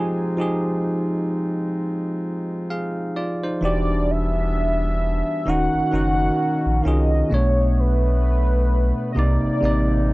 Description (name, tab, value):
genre	R&B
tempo	65 BPM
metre	4/4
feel	swing 58% on 16ths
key	unclear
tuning	A4 = 439 Hz
part	warm velvety synth lead	melody	0.0-10.1 s	B4 to Ab5	-25 LUFS	equal	chorus
part	bell-like tine electric piano	accompaniment	0.0-10.1 s	B2 to F5	-23 LUFS	equal	none
part	warm woodwind section	sustained chords	0.0-10.1 s	C3 to F#4	-31 LUFS	left 1 dB	none
part	warm sub bass	bass	3.6-10.1 s	D#1 to C2	-20 LUFS	equal	none
room	little or no reverb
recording	dry, gritty hardware recording, transformer saturation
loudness	-19 LUFS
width	side -20 dB against mid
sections	0.0-3.6 A section; 3.6-10.1 B section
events	break 0.0-3.6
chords	0.0 Fm9; 3.6 Em9; 5.5 D#m9; 7.3 Bm9; 9.2 Cm9